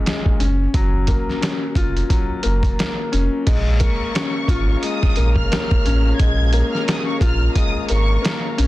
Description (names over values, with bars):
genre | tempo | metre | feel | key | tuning
hip hop, boom-bap hip-hop | 88 BPM | 4/4 | swing 58% on 16ths | Bb minor | A4 = 440 Hz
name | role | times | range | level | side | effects
clear grand piano | accompaniment | 0.0-8.7 s | Bb2 to F4 | -23 LUFS | left 3 dB | high-pass filter, low-pass filter
trip hop sampler-style drum kit | drums | 0.1-8.7 s | crash cymbal, hi-hat, kick drum, snare drum | -20 LUFS | equal | none
sub bass with octave | bass | 0.4-8.7 s | F1 to Bb1 | -18 LUFS | equal | none
dark studio string section | sustained chords | 3.5-8.7 s | Ab4 to Bb5 | -32 LUFS | equal | high-pass filter, low-pass filter
clear symphonic violin section | melody | 3.8-8.4 s | Db6 to Ab6 | -27 LUFS | equal | high-pass filter, low-pass filter, tape echo
room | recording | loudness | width
little or no reverb | dense, heavily limited modern master | -16 LUFS | side -17 dB against mid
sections
0.0-3.5 A section; 3.5-8.7 B section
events
none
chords
0.4 Gbmaj7; 3.5 Bbm7